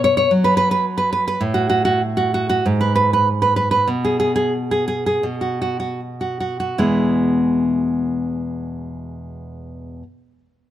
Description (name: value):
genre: romantic piece for solo classical guitar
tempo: 37-56 BPM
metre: 2/4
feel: rubato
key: E major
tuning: A4 = 440 Hz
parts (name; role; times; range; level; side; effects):
- nylon-string guitar; solo; 0.0-10.0 s; E2 to C#5; -17 LUFS; right 1 dB; none
room: light reverb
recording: close, detailed microphones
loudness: -16 LUFS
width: side -12 dB against mid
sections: 0.0-6.8 A section; 6.8-10.0 B section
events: slowing down 0.3-6.8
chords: 0.0 B5; 1.4 N.C.; 6.8 E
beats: 0.31 | 1.40 2.65 | 3.88 5.23 | 6.79 8.36